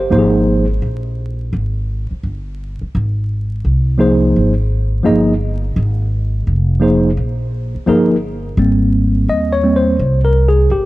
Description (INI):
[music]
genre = hip hop, jazz-hop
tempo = 85 BPM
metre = 4/4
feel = swing 64% on 16ths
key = unclear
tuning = A4 = 441 Hz
[part]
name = tine electric piano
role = accompaniment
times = 0.0-10.9 s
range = F3 to Eb5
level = -14 LUFS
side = equal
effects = medium stereo tremolo
[part]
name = upright bass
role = bass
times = 0.0-10.9 s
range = F1 to Eb2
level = -16 LUFS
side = equal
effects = none
[sound]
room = light reverb, small room ambience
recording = dark, warm production, vinyl crackle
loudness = -13 LUFS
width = side -18 dB against mid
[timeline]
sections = 0.0-8.6 A section; 8.6-10.9 B section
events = tine electric piano solo 8.6-10.9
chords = 0.1 Fm9/Ab; 5.8 Fm9; 8.6 Abmaj9